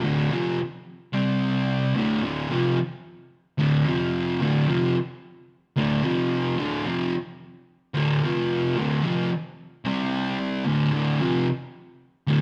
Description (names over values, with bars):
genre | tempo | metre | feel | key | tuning
rock | 110 BPM | 4/4 | straight | unclear | A4 = 441 Hz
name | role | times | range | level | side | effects
fuzz guitar | solo | 0.0-12.4 s | D2 to C4 | -25 LUFS | equal | distortion
room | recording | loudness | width
wet stone room reverb, RT60 1.3 s | band playing live in one room | -25 LUFS | mono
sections
0.0-10.9 A section; 10.9-12.4 B section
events
none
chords
0.0 D5; 1.1 C5; 2.0 D5; 3.9 F5; 4.4 D5; 6.0 F5; 6.6 D5; 8.2 F5; 8.8 D5; 9.8 C5; 10.7 D5